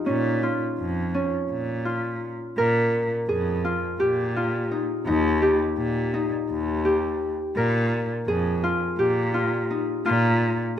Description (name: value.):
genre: contemporary instrumental, chamber music in an uneven meter.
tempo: 168 BPM (eighths).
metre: 7/8.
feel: straight.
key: Bb dorian.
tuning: A4 = 440 Hz.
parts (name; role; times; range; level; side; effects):
Celtic harp; arpeggios; 0.0-10.8 s; Db4 to Bb4; -24 LUFS; left 1 dB; none.
warm cello; bass; 0.1-10.6 s; Eb2 to Bb2; -26 LUFS; right 1 dB; none.
room: light reverb.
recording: close, detailed microphones.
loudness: -22 LUFS.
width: side -10 dB against mid.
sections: 0.0-10.1 A section.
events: none.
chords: 0.1 Bbm7; 5.1 Eb; 7.6 Bb5.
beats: | 0.07 0.43 0.79 1.14 1.50 1.86 2.21 | 2.57 2.93 3.28 3.64 4.00 4.36 4.71 | 5.07 5.42 5.78 6.14 6.50 6.85 7.21 | 7.57 7.92 8.28 8.64 8.99 9.35 9.71 | 10.07 10.42 10.78.